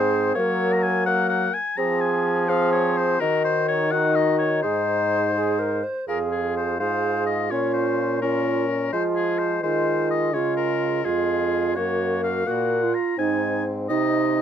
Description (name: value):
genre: classical, renaissance-style consort dance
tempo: 84 BPM (dotted quarters)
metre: 6/8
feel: straight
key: unclear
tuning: A4 = 440 Hz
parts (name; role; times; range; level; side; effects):
- clear oboe; melody; 0.0-14.4 s; Ab4 to Bb5; -26 LUFS; left 4 dB; none
- mellow tenor recorder; second line; 0.0-14.4 s; Eb4 to C5; -25 LUFS; right 7 dB; none
- warm bassoon; accompaniment; 0.0-14.4 s; Ab3 to F4; -25 LUFS; left 4 dB; none
- clear trombone; bass; 0.0-14.4 s; F2 to Gb3; -27 LUFS; right 1 dB; none
room: light reverb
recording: dark, warm production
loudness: -20 LUFS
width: side -9 dB against mid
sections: 0.0-6.1 A section; 6.1-14.4 B section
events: none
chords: 0.4 Gb; 1.8 Fm; 3.2 Ebm; 4.6 Ab; 6.1 Fm; 7.5 Bbm; 8.9 Fm; 10.3 Db; 11.8 Gb; 13.2 Ab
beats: | 0.36 1.07 | 1.78 2.49 | 3.21 3.92 | 4.64 5.37 | 6.09 6.80 | 7.51 8.22 | 8.93 9.64 | 10.35 11.05 | 11.77 12.47 | 13.19 13.90